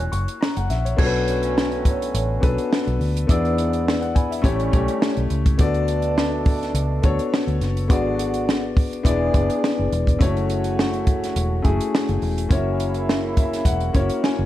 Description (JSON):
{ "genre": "lush 1970s-style soul", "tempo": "104 BPM", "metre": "4/4", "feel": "swing 54% on 16ths", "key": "B dorian", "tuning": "A4 = 440 Hz", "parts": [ { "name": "dark concert grand piano", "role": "accompaniment", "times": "0.0-14.5 s", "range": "A3 to C#6", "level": "-24 LUFS", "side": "left 4 dB", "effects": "none" }, { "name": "muted trombone section", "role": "stabs", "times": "0.0-14.5 s", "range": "G#2 to G#4", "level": "-29 LUFS", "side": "right 5 dB", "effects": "none" }, { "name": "vintage muted fingered electric bass", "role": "bass", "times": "0.0-14.5 s", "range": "E1 to E2", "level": "-24 LUFS", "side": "equal", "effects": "none" }, { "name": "large celesta", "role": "texture", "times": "0.0-4.7, 11.6-14.5 s", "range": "E5 to A#6", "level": "-34 LUFS", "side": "right 1 dB", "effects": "none" }, { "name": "compact cocktail drum kit", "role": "drums", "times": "0.1-14.4 s", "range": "crash cymbal, hi-hat, kick drum, snare drum", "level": "-21 LUFS", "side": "equal", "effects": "none" } ], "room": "small room ambience", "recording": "none", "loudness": "-18 LUFS", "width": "side -13 dB against mid", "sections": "1.0-14.5 A section", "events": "grand piano fill 13.1-14.5", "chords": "0.0 F#7; 1.0 Bm7; 3.3 E7; 4.4 A7; 5.6 D6; 7.9 G#m7b5; 9.1 E7; 10.2 F#m7; 12.5 F#7" }